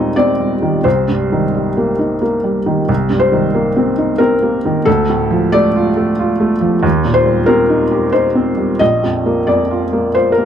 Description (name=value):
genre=neoclassical minimalist piano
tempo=90 BPM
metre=3/4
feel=rubato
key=C dorian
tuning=A4 = 439 Hz
part: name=felt-muted upright piano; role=solo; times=0.0-10.4 s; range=Bb1 to Eb5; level=-12 LUFS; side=equal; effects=none
room=moderate spring reverb, RT60 2.5 s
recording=none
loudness=-12 LUFS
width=side -9 dB against mid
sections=0.0-2.9 A section; 2.9-10.4 B section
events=none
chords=0.0 Eb6; 0.8 Cm7; 4.9 Dm; 6.8 Eb6; 8.8 Bb